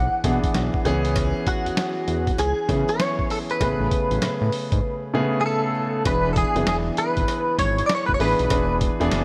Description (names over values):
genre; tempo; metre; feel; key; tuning
R&B, new jack swing; 98 BPM; 4/4; swing 64% on 16ths; unclear; A4 = 440 Hz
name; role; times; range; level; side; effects
direct-recorded clean electric guitar; melody; 0.0-8.8 s; F#4 to F#5; -27 LUFS; equal; ensemble chorus
warm grand piano; accompaniment; 0.0-9.2 s; C#3 to G#4; -28 LUFS; equal; none
fat analog bass; bass; 0.0-9.2 s; E1 to C#3; -27 LUFS; equal; none
boom bap sampler-style drum kit; drums; 0.2-9.2 s; hi-hat, kick drum, snare drum; -28 LUFS; equal; none
cowbell; percussion; 0.5-9.2 s; none; -40 LUFS; equal; none
room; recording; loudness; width
light reverb, digital ambience; none; -22 LUFS; mono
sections
0.0-6.1 A section; 6.1-9.2 B section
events
silent gap 4.8-6.1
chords
0.0 E7/B; 0.9 C#m7; 3.6 Amaj9; 6.1 E7